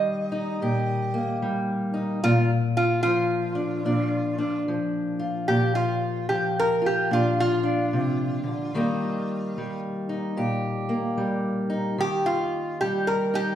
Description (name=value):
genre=acoustic country blues, solo or duo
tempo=74 BPM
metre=4/4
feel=swing 63% on 8ths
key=Bb major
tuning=A4 = 439 Hz
part: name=lap resonator guitar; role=melody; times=0.0-13.6 s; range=F4 to Eb5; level=-25 LUFS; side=right 1 dB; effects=none
part: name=fingerpicked steel-string acoustic guitar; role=accompaniment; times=0.0-13.6 s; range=Bb2 to Bb4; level=-25 LUFS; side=left 1 dB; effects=none
room=wet recital hall reverb, RT60 1.4 s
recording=recorded in a church or concert hall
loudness=-23 LUFS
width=side -10 dB against mid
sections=0.0-13.6 A section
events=resonator guitar played with a steel bar solo 0.0-13.6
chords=0.0 Eb; 2.2 Bb; 8.7 Eb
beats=0.60 1.42 | 2.23 3.05 3.86 4.68 | 5.49 6.30 7.12 7.93 | 8.74 9.56 10.37 11.18 | 11.99 12.81